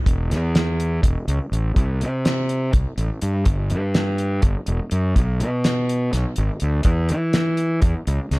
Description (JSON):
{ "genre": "psychedelic rock", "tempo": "247 BPM (eighths)", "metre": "7/8", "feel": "straight", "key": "unclear", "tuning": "A4 = 440 Hz", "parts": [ { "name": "fuzz fingered electric bass", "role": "bass", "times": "0.1-8.4 s", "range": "E1 to E3", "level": "-20 LUFS", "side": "equal", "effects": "overdrive" }, { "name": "cloth-damped thuddy drum kit", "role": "drums", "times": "0.1-8.4 s", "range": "hi-hat, kick drum, snare drum", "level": "-21 LUFS", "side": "equal", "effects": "none" } ], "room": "little or no reverb", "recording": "none", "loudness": "-18 LUFS", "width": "side -23 dB against mid", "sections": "0.1-8.4 A section", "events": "none", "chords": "none" }